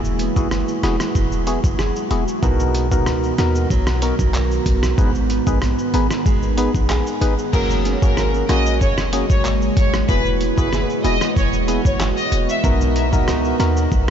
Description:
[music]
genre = dancehall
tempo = 94 BPM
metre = 4/4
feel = straight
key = unclear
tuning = A4 = 440 Hz
[part]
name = deep dark ambient pad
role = sustained chords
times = 0.0-14.1 s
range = C#3 to A#4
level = -24 LUFS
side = right 1 dB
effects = chorus, built-in reverb, sidechain pumping
[part]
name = nylon-string guitar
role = arpeggios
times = 0.0-14.1 s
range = G#2 to A#4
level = -27 LUFS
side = right 6 dB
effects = diffuse ambient delay
[part]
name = clean 808-style bass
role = bass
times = 0.0-14.1 s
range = E1 to D#2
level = -21 LUFS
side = equal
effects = none
[part]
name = trip hop sampler-style drum kit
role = drums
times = 0.0-14.1 s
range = crash cymbal, handclaps, hi-hat, kick drum, rim click, shaker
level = -22 LUFS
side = equal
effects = overdrive
[part]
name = percussive organ stab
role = accompaniment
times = 0.4-13.9 s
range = A#3 to B4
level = -24 LUFS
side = left 2 dB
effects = chorus
[part]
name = warm studio violin section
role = melody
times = 7.5-12.6 s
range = A#4 to E5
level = -23 LUFS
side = left 1 dB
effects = diffuse ambient delay
[sound]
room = moderate huge ambient reverb, RT60 6.7 s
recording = dreamy mix soaked in reverb, nothing above 7.6 kHz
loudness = -16 LUFS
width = side -8 dB against mid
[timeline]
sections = 0.0-7.5 A section; 7.5-14.1 B section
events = none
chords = 0.0 Eadd9; 2.4 Bmaj7; 5.0 G#m; 7.5 F#add9; 10.1 Eadd9; 12.6 Bmaj7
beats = 0.51 1.15 1.79 | 2.43 3.07 3.70 4.34 | 4.98 5.62 6.26 6.90 | 7.53 8.17 8.81 9.45 | 10.09 10.72 11.36 12.00 | 12.64 13.28 13.92

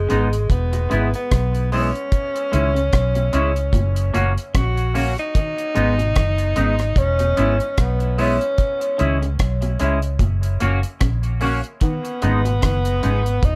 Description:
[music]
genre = roots reggae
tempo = 74 BPM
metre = 4/4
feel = swing 57% on 16ths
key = G# minor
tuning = A4 = 440 Hz
[part]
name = warm tenor saxophone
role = melody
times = 0.0-13.6 s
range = G#3 to F#4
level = -26 LUFS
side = equal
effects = dub echo
[part]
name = vintage muted fingered electric bass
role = bass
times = 0.0-13.6 s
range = E1 to C#2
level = -22 LUFS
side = equal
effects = none
[part]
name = semi-hollow electric guitar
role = accompaniment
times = 0.1-13.2 s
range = G#3 to F#4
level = -27 LUFS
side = equal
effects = lush chorus, dub echo
[part]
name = electric guitar at the edge of break-up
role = arpeggios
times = 0.1-13.2 s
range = A#2 to D#3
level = -31 LUFS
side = equal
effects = lush chorus
[part]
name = deep reggae drum kit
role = drums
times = 0.1-13.6 s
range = hi-hat, kick drum, rim click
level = -24 LUFS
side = equal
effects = none
[sound]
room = light reverb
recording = none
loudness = -20 LUFS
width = mono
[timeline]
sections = 0.0-13.6 A section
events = none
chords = 0.5 E; 2.1 C#m; 3.7 F#; 5.3 G#m; 7.0 E; 8.6 C#m; 10.2 F#; 11.8 G#m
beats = 0.50 1.31 | 2.12 2.92 3.73 4.54 | 5.35 6.16 6.97 7.78 | 8.58 9.39 10.20 11.01 | 11.82 12.63 13.44

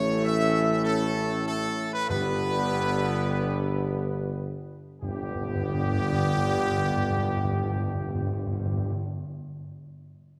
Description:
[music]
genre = classical, ceremonial fanfare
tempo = 71-102 BPM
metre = 4/4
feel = straight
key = G major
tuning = A4 = 440 Hz
[part]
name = bright trumpet section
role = melody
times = 0.0-8.9 s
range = G4 to E5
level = -32 LUFS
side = equal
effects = none
[part]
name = warm French horn section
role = sustained chords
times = 0.0-8.9 s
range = C#4 to G4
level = -37 LUFS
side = equal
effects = none
[part]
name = warm trombone section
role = sustained chords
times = 0.0-9.0 s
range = A2 to B3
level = -36 LUFS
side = equal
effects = none
[part]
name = mellow tuba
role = bass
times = 0.0-8.9 s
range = G1 to A1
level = -32 LUFS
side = equal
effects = none
[part]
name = timpani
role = percussion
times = 2.1-9.0 s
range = G2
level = -33 LUFS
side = equal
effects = none
[sound]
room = wet concert hall reverb, RT60 1.9 s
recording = dark, warm production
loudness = -27 LUFS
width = mono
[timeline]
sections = 0.0-5.0 A section; 5.0-8.2 B section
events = slowing down 0.0-5.0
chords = 0.0 A; 2.1 G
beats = 0.25 0.85 1.47 | 2.10 2.76 3.46 4.20 | 5.02 5.82 6.62 7.42

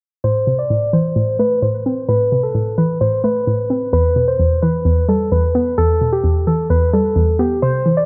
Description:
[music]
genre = hip hop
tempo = 130 BPM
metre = 4/4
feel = half-time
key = A minor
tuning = A4 = 440 Hz
[part]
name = muted felt-like synth keys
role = melody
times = 0.2-8.1 s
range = G4 to D5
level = -20 LUFS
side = equal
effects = chorus, low-pass filter, tape echo
[part]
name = hollow square pluck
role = accompaniment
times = 0.2-8.1 s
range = E2 to C4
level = -19 LUFS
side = equal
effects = chorus, low-pass filter
[sound]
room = light reverb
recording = none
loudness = -17 LUFS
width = mono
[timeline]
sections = 0.2-8.1 A section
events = filter sweep 0.2-8.1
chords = 0.2 Am; 3.9 Em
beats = | 0.24 0.70 1.16 1.62 | 2.09 2.55 3.01 3.47 | 3.93 4.39 4.86 5.32 | 5.78 6.24 6.70 7.16 | 7.62

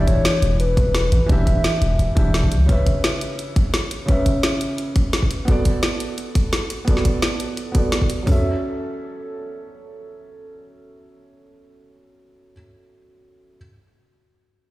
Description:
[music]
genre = liquid drum and bass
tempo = 172 BPM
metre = 4/4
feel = swing 53% on 16ths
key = F# minor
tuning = A4 = 440 Hz
[part]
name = hollow clarinet-like synth lead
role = melody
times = 0.0-2.0 s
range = B4 to E5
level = -25 LUFS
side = left 2 dB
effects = chorus, tape echo
[part]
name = felt-muted upright piano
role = accompaniment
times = 0.0-13.6 s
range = C#3 to E5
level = -25 LUFS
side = right 1 dB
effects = low-pass filter, tape echo
[part]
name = long sustained 808-style bass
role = bass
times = 0.0-2.7 s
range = E1 to C#2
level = -19 LUFS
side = equal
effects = none
[part]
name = drum and bass drum kit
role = drums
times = 0.1-8.4 s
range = hi-hat, kick drum, toms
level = -18 LUFS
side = equal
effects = none
[part]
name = drum and bass drum kit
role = drums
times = 0.1-8.2 s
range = hi-hat, snare drum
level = -25 LUFS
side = equal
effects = none
[sound]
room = light reverb, digital ambience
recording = played on a big sound system in a bare room, stone room reverb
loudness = -17 LUFS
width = side -17 dB against mid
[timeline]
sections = 0.0-8.3 A section; 8.3-11.1 B section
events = none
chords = 0.0 Em7; 2.5 C#m7; 5.5 Bm7; 8.3 F#m7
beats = 0.25 0.60 0.95 | 1.29 1.64 1.99 2.34 | 2.69 3.04 3.39 3.74 | 4.08 4.43 4.78 5.13 | 5.48 5.83 6.18 6.53 | 6.88 7.22 7.57 7.92 | 8.27 8.62 8.97 9.32 | 9.67 10.02 10.36 10.71

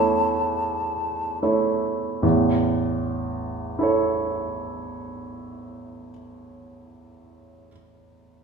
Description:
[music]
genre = classical, romantic duo for flute and grand piano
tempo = 38 BPM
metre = 4/4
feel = rubato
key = A major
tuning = A4 = 440 Hz
[part]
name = mellow hollow silver concert flute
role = melody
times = 0.0-1.4 s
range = A5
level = -26 LUFS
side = left 3 dB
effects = none
[part]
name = clear baby grand piano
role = accompaniment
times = 0.0-8.4 s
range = A1 to C#5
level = -23 LUFS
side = right 2 dB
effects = none
[sound]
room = wet stone room reverb, RT60 1.3 s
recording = none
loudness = -21 LUFS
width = side -5 dB against mid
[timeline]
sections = 0.0-2.2 A section; 2.2-8.4 B section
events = slowing down 0.0-2.2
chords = 0.0 A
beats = 0.63 | 2.23 3.79 5.35 6.89

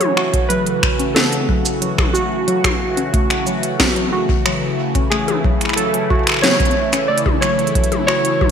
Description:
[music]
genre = IDM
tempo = 91 BPM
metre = 4/4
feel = straight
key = F# minor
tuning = A4 = 438 Hz
[part]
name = warbly lo-fi synth keys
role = melody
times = 0.0-8.5 s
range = F#4 to D5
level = -21 LUFS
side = right 3 dB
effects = chorus, ping-pong delay
[part]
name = phased analog pad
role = sustained chords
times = 0.0-8.5 s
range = C#3 to F#4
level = -22 LUFS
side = equal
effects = phaser, chorus, vintage 12-bit sampler grit, sidechain pumping
[part]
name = warbly dusty pluck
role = arpeggios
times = 0.0-8.5 s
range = F#3 to F#4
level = -23 LUFS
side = left 3 dB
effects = chorus, vintage 12-bit sampler grit, digital delay
[part]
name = organic electronic drum kit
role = drums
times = 0.0-8.5 s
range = finger snaps, hi-hat, shaker, snare drum, toms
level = -19 LUFS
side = left 1 dB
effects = overdrive, gated reverb, ping-pong delay
[part]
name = electronic kick drum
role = drums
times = 0.3-8.5 s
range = none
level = -20 LUFS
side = equal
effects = overdrive
[sound]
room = light reverb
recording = bright 1980s-style digital production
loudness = -14 LUFS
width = side -7 dB against mid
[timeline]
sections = 0.0-8.5 A section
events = none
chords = 0.0 F#m7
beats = 0.50 1.16 1.82 | 2.48 3.14 3.80 4.46 | 5.12 5.78 6.43 7.09 | 7.75 8.41

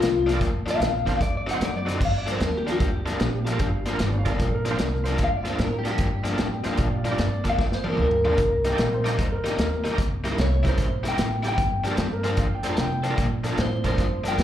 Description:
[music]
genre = electric blues shuffle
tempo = 150 BPM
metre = 4/4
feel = swing 66% on 8ths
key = G minor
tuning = A4 = 438 Hz
[part]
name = electric guitar through a small old amp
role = melody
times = 0.0-14.4 s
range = F4 to G5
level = -27 LUFS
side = left 2 dB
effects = slapback echo
[part]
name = overdriven electric guitar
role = riff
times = 0.0-14.4 s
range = G2 to E4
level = -30 LUFS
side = left 4 dB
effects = slapback echo
[part]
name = upright bass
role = bass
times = 0.0-14.4 s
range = G1 to C3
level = -27 LUFS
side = right 1 dB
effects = none
[part]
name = vintage drum kit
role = drums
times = 0.0-14.4 s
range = crash cymbal, hi-hat, kick drum, snare drum, toms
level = -26 LUFS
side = equal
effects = none
[part]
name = bright tonewheel organ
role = accompaniment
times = 0.3-14.4 s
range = Bb3 to C5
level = -34 LUFS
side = right 5 dB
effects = slow rotary speaker, overdrive, chorus vibrato, slapback echo
[part]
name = warm upright piano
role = second line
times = 3.5-13.2 s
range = G4 to Bb5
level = -33 LUFS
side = right 1 dB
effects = slapback echo
[sound]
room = light reverb, studio ambience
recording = live gig heard through the venue's PA, club reverb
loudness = -22 LUFS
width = side -11 dB against mid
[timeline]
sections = 0.0-2.0 A section; 2.0-14.4 B section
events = clean electric guitar solo 0.0-2.0; drum fill 7.6-8.4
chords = 0.0 Gm7; 1.2 D7b9; 2.0 Gm7; 8.4 Cm7; 10.0 C#dim7; 11.6 Gm7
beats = 0.01 | 0.41 0.81 1.20 1.60 | 2.00 2.40 2.80 3.20 | 3.60 4.00 4.39 4.79 | 5.19 5.59 5.99 6.39 | 6.79 7.19 7.59 7.99 | 8.38 8.78 9.18 9.58 | 9.98 10.38 10.78 11.18 | 11.58 11.98 12.38 12.78 | 13.18 13.58 13.98 14.38

